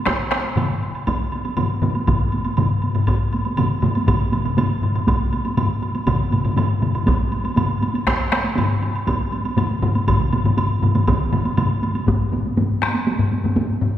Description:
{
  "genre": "japanese traditional, taiko drum ensemble",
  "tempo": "120 BPM",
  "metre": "4/4",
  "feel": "straight",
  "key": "none",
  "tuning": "none",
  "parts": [
    { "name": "taiko ensemble", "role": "percussion", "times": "0.1-13.9 s", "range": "none", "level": "-24 LUFS", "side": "right 2 dB", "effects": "none" },
    { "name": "taiko ensemble", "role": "percussion", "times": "0.1-13.9 s", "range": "none", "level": "-22 LUFS", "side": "left 2 dB", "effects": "none" },
    { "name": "taiko ensemble", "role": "percussion", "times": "0.1-11.7 s", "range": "none", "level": "-24 LUFS", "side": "right 2 dB", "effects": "none" },
    { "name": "taiko ensemble", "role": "percussion", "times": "0.1-12.2 s", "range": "none", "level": "-25 LUFS", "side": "equal", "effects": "none" },
    { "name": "woodblock", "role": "percussion", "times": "0.1-12.1 s", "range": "none", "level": "-28 LUFS", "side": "right 2 dB", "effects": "none" }
  ],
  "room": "wet concert hall reverb, RT60 2.4 s",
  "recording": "heard from further back in the room",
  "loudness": "-18 LUFS",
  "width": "side -11 dB against mid",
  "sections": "0.0-12.1 A section; 12.1-14.0 B section",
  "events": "none",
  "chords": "none"
}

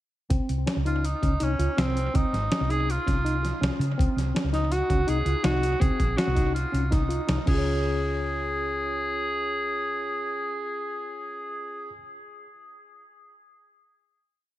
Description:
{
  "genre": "progressive instrumental, band music in an uneven meter",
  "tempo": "163 BPM",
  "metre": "5/4",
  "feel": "straight",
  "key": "Db major",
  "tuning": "A4 = 439 Hz",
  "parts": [
    { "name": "tine electric piano", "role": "arpeggios", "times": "0.3-12.0 s", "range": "C4 to Db5", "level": "-32 LUFS", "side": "left 1 dB", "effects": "medium stereo tremolo, dub echo" },
    { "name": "hollow-body short-scale fingered electric bass", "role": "bass", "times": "0.3-11.9 s", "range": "Ab1 to Db3", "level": "-27 LUFS", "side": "equal", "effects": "none" },
    { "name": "boom bap sampler-style drum kit", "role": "drums", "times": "0.3-7.6 s", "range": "crash cymbal, hi-hat, kick drum, snare drum", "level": "-28 LUFS", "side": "equal", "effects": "none" },
    { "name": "clear tenor saxophone", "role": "melody", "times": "0.9-11.9 s", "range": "C4 to Ab4", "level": "-29 LUFS", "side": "equal", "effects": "dub echo" }
  ],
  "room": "little or no reverb",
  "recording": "echo-heavy mix",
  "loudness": "-24 LUFS",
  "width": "side -14 dB against mid",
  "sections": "0.3-7.7 A section; 7.7-11.4 final hit",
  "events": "none",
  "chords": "0.3 Dbmaj9; 4.0 Ebm; 7.5 Db"
}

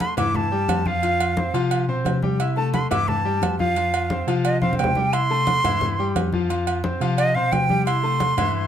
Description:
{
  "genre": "latin, salsa",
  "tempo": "176 BPM",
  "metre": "4/4",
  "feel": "straight",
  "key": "unclear",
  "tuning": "A4 = 441 Hz",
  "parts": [
    { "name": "bright silver concert flute", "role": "melody", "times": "0.0-8.7 s", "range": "Eb5 to D6", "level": "-23 LUFS", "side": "right 1 dB", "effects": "none" },
    { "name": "bright concert grand piano", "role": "accompaniment", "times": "0.0-8.7 s", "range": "E3 to E6", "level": "-25 LUFS", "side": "left 4 dB", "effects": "none" },
    { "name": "agogo bells and timbales", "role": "percussion", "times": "0.0-8.5 s", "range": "none", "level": "-29 LUFS", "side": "right 7 dB", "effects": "none" },
    { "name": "congas", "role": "percussion", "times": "0.0-8.7 s", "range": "none", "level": "-28 LUFS", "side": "left 2 dB", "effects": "none" },
    { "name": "mellow tine electric piano", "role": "bass", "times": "0.2-8.7 s", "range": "F2 to C3", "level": "-25 LUFS", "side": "equal", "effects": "medium stereo tremolo" }
  ],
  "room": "moderate studio reverb, RT60 0.9 s",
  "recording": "none",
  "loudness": "-19 LUFS",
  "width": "side -9 dB against mid",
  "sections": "0.0-8.7 A section",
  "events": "flute solo 0.0-8.7; drum fill 4.6-5.1",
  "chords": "0.0 Fmaj9; 1.0 Fsus2; 2.4 C6; 3.8 Fsus2; 5.1 C6; 6.5 Fsus2; 7.9 C6"
}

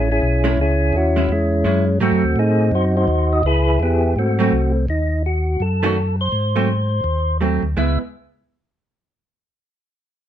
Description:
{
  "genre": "jazz",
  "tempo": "167 BPM",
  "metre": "4/4",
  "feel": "swing 63% on 8ths",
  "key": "C# minor",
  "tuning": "A4 = 444 Hz",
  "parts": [
    { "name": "percussive tonewheel organ", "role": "melody", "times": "0.0-8.0 s", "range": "G#3 to E5", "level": "-19 LUFS", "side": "equal", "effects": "slow rotary speaker" },
    { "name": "vintage hollow-body jazz guitar", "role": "accompaniment", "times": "0.0-2.2, 4.4-8.0 s", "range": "D#3 to F#4", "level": "-21 LUFS", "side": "right 4 dB", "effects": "none" },
    { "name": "mellow tonewheel organ", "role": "bass", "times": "0.0-8.0 s", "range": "A1 to A2", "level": "-19 LUFS", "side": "equal", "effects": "slow rotary speaker" }
  ],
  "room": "light reverb",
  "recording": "dark, warm production, nothing above 10.4 kHz",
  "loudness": "-16 LUFS",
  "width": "side -10 dB against mid",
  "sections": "0.0-4.9 A section; 4.9-7.8 B section; 7.8-9.2 C section",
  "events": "none",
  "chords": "0.0 Amaj7; 2.0 G#7b9; 3.4 C#m7; 4.2 G#7b9; 4.9 D#dim; 6.3 G#7b9; 7.8 C#m7"
}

